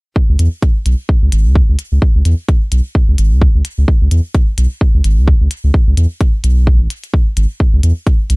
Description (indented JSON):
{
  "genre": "minimal techno",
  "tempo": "129 BPM",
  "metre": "4/4",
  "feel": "swing 57% on 16ths",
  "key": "C# minor",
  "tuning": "A4 = 440 Hz",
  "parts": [
    { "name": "electronic kick drum", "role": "drums", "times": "0.2-8.2 s", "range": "none", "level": "-11 LUFS", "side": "equal", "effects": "none" },
    { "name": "saturated sub bass", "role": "bass", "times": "0.3-8.4 s", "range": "G#1 to E2", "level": "-11 LUFS", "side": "equal", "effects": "sidechain pumping" },
    { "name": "electronic hi-hat", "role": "drums", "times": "0.4-8.4 s", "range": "none", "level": "-28 LUFS", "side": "left 2 dB", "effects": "none" }
  ],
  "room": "little or no reverb",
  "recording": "none",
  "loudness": "-10 LUFS",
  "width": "side -33 dB against mid",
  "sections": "0.2-8.4 A section",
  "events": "none",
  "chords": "none"
}